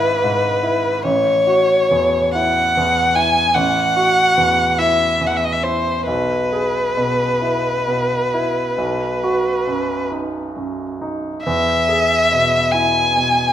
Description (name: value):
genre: classical, romantic duo for violin and grand piano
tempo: 44-52 BPM (dotted quarters)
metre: 12/8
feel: rubato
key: E major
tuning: A4 = 440 Hz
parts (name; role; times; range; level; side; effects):
- rich violin; melody; 0.0-13.5 s; B4 to G#5; -16 LUFS; left 1 dB; none
- clear baby grand piano; accompaniment; 0.0-13.5 s; G#1 to G#4; -21 LUFS; right 1 dB; none
room: moderate recital hall reverb, RT60 1.5 s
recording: minimal, uncompressed stereo recording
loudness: -15 LUFS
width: side -10 dB against mid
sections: 0.0-13.5 A section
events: none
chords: 0.0 E/G#; 1.0 F#m7/A; 6.1 E/B; 8.8 B; 11.4 E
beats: | 1.03 2.34 3.56 4.79 | 6.08 7.42 8.78 10.11 | 11.45 12.72